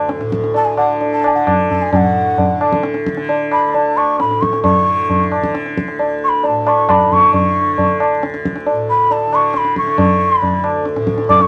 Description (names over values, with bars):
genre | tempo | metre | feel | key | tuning
indian classical, Hindustani | 134 BPM | 3/4 | straight | D raga yaman | A4 = 442 Hz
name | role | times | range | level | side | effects
tanpura | drone | 0.0-11.5 s | D2 to D3 | -23 LUFS | equal | none
tabla | percussion | 0.1-11.5 s | none | -18 LUFS | equal | none
breathy bansuri | melody | 0.6-11.5 s | F#5 to D6 | -17 LUFS | equal | none
room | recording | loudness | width
wet studio ambience, RT60 0.5 s | vinyl crackle | -15 LUFS | mono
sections
0.0-1.9 A section; 1.9-11.5 B section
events
speeding up 0.0-11.5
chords
none